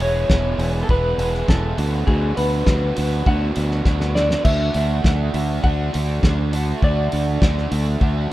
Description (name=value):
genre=indie rock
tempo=101 BPM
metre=4/4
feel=straight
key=D lydian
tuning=A4 = 440 Hz
part: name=electric guitar through a small old amp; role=melody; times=0.0-7.7 s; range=G#4 to F#5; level=-24 LUFS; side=equal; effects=tremolo, slapback echo
part: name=overdriven electric guitar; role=riff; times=0.0-8.3 s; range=E2 to G#4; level=-26 LUFS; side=right 6 dB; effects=lush chorus, slapback echo
part: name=raw garage guitar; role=riff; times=0.0-8.3 s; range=D3 to G#4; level=-31 LUFS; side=left 8 dB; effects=overdrive
part: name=growling fingered electric bass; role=bass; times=0.0-8.3 s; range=E1 to D2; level=-21 LUFS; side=equal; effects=overdrive
part: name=cloth-damped thuddy drum kit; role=drums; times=0.0-8.2 s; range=crash cymbal, hi-hat, kick drum, snare drum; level=-20 LUFS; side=equal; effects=none
room=little or no reverb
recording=rough home demo mix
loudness=-17 LUFS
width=side -16 dB against mid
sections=0.0-8.3 A section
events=drum fill 3.9-4.5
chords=0.0 E; 1.8 Bm/D; 4.5 D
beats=0.30 0.89 1.49 | 2.08 2.67 3.27 3.86 | 4.46 5.05 5.64 6.24 | 6.83 7.43 8.02